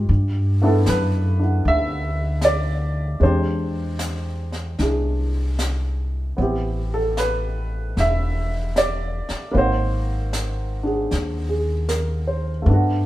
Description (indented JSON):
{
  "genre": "jazz ballad",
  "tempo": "76 BPM",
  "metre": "4/4",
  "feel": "swing 67% on 8ths",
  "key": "unclear",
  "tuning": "A4 = 441 Hz",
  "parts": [
    { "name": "dark baby grand piano", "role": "accompaniment", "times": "0.0-13.1 s", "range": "G3 to E5", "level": "-23 LUFS", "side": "right 1 dB", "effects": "none" },
    { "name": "upright bass", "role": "bass", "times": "0.0-13.1 s", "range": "E1 to G2", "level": "-21 LUFS", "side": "equal", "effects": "none" },
    { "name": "jazz brush drum kit", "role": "drums", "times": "0.1-13.1 s", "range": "brushed snare drum, hi-hat, snare drum", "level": "-32 LUFS", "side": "left 1 dB", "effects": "none" }
  ],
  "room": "moderate stone room reverb, RT60 1.1 s",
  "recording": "band playing live in one room",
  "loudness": "-19 LUFS",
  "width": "side -15 dB against mid",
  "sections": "0.0-13.1 A section",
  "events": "none",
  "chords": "0.1 G6; 3.2 E7alt; 6.4 Am9; 9.5 G#9"
}